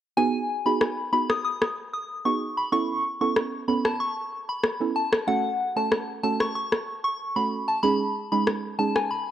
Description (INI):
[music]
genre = dancehall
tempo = 94 BPM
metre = 4/4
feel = straight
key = G# phrygian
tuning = A4 = 439 Hz
[part]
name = soft synth bell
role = melody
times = 0.2-9.3 s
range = F#5 to D#6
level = -26 LUFS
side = left 2 dB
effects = chorus, phaser, analog delay
[part]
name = soft round pluck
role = accompaniment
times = 0.2-9.1 s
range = G#3 to A4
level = -27 LUFS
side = right 5 dB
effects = chorus, cassette tape
[part]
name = electronic rim click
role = drums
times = 0.8-9.1 s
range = none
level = -25 LUFS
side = left 1 dB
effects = cassette tape
[sound]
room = light reverb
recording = home recording on cassette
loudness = -23 LUFS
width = side -11 dB against mid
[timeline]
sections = 0.2-9.3 A section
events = hi-hats muted 0.2-9.3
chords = 0.2 G#m7; 2.7 Aadd9; 5.3 F#m/A; 7.8 C#sus2